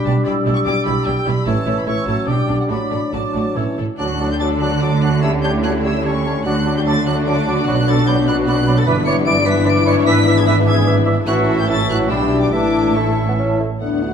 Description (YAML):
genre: quick classical-period movement for symphony orchestra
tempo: 138-153 BPM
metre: 3/4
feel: rubato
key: D major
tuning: A4 = 441 Hz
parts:
  - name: rich chamber violin section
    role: melody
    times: 0.0-14.1 s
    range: F#5 to D7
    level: -26 LUFS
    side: left 2 dB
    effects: none
  - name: mellow hollow large flute ensemble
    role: second line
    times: 0.0-14.1 s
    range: D5 to E6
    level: -28 LUFS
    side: right 2 dB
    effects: none
  - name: warm oboe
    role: second line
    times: 0.0-14.1 s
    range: B4 to F#5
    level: -28 LUFS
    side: right 1 dB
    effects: none
  - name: warm bassoon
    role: accompaniment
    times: 0.0-14.1 s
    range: E3 to C#4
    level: -24 LUFS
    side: right 2 dB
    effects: none
  - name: dark French horn section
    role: sustained chords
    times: 0.0-14.1 s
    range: E3 to F#4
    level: -20 LUFS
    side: left 6 dB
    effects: none
  - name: clear symphonic violin section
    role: second line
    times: 0.1-14.1 s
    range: E4 to G5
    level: -28 LUFS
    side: left 4 dB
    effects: none
  - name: rich chamber viola section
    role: accompaniment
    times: 0.1-14.1 s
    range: G3 to E4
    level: -26 LUFS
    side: right 2 dB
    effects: none
  - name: rich chamber double bass section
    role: bass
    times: 0.1-14.1 s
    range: G1 to D2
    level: -22 LUFS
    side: right 4 dB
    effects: none
  - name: rich symphonic cello section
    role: bass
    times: 0.1-14.1 s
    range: D2 to D3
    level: -22 LUFS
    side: right 3 dB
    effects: none
  - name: dark trumpet section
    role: stabs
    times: 4.0-13.4 s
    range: C#4 to D5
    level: -25 LUFS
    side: right 1 dB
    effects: none
room: wet recital hall reverb, RT60 1.7 s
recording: dark, warm production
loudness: -14 LUFS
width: side -7 dB against mid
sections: 0.0-4.0 A section; 4.0-13.8 B section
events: none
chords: 0.3 Em7/B; 1.5 A; 2.3 G; 2.7 D/A; 3.6 A; 4.0 D; 5.2 A7/D; 6.5 D; 7.7 Bm; 8.9 Em7/G; 10.1 E7/G#; 11.3 A; 12.1 G/B; 12.5 A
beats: | 0.26 0.66 1.06 | 1.47 1.87 2.28 | 2.70 3.14 3.57 | 4.00 4.41 4.82 | 5.23 5.64 6.05 | 6.45 6.86 7.27 | 7.67 8.07 8.47 | 8.87 9.26 9.66 | 10.06 10.46 10.87 | 11.28 11.69 12.10 | 12.53 12.96 13.39 | 13.82